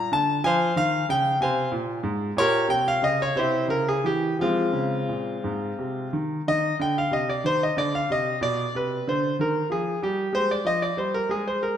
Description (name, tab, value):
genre	classical, baroque-style suite movement for grand piano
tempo	62 BPM (dotted quarters)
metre	6/8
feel	rubato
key	F minor, C minor from 6.5 s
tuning	A4 = 436 Hz
part	clear concert grand piano	solo	0.0-11.8 s	Ab2 to A5	-22 LUFS	equal	none
room	wet recital hall reverb, RT60 1.8 s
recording	none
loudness	-22 LUFS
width	side -9 dB against mid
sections	0.0-6.5 A section; 6.5-11.8 A section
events	none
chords	0.5 Fm; 2.4 Gdim/Bb; 3.4 C; 4.4 Fm; 6.5 Cm; 8.4 Bm; 9.4 Ebadd9; 10.3 Fmadd9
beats	| 0.45 1.41 | 2.37 3.36 | 4.38 5.43 | 6.45 7.43 | 8.41 9.37 | 10.33 11.28